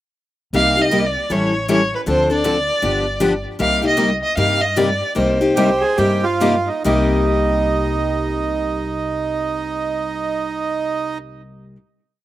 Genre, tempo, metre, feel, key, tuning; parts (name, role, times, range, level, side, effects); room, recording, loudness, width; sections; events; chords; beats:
acoustic string swing (jazz manouche); 134-157 BPM; 4/4; swing 63% on 8ths; C minor; A4 = 440 Hz
picked steel-string acoustic guitar; accompaniment; 0.5-11.8 s; C3 to A4; -21 LUFS; left 3 dB
picked steel-string acoustic guitar; accompaniment; 0.5-11.8 s; C3 to A4; -27 LUFS; right 4 dB
upright bass; bass; 0.5-11.7 s; G1 to G2; -25 LUFS; equal
rich violin; melody; 0.6-6.4 s; B4 to F5; -19 LUFS; equal
accordion; second line; 5.6-11.2 s; Eb4 to Ab4; -20 LUFS; right 4 dB; slapback echo
little or no reverb; recorded outdoors, with no room sound; -16 LUFS; side -14 dB against mid
0.5-6.8 A section; 6.8-10.4 final chord
slowing down 3.6-6.8
0.5 Cm7; 1.3 A7; 2.1 Dm7; 2.8 G7; 3.6 Cm7
| 0.53 0.92 1.30 1.68 | 2.07 2.45 2.83 3.21 | 3.60 3.98 4.37 4.76 | 5.16 5.56 5.98 6.41 | 6.84 7.29 7.74 8.19 | 8.63 9.08 9.53 9.97